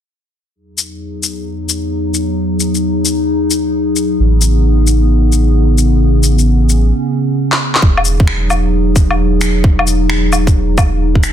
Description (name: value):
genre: future garage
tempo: 132 BPM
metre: 4/4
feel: swing 66% on 16ths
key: unclear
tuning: A4 = 438 Hz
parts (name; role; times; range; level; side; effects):
- warbly tape-like pad; sustained chords; 0.6-11.3 s; E2 to G#4; -16 LUFS; left 1 dB; chorus, built-in reverb, sidechain pumping
- electronic shaker, handclaps, woodblock and finger snaps; drums; 0.8-11.3 s; none; -16 LUFS; left 2 dB; soft clipping on snare
- warm sub bass; bass; 4.2-11.3 s; E1 to A1; -12 LUFS; equal; sidechain pumping
- electronic kick drum; drums; 7.8-11.2 s; none; -11 LUFS; equal; none
room: little or no reverb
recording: dense, heavily limited modern master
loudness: -11 LUFS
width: side -10 dB against mid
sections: 0.6-7.8 A section; 7.8-11.3 B section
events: break 6.9-7.8; drum fill 7.5-7.8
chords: 0.6 Emaj9; 4.2 Amaj9#11; 7.8 Emaj9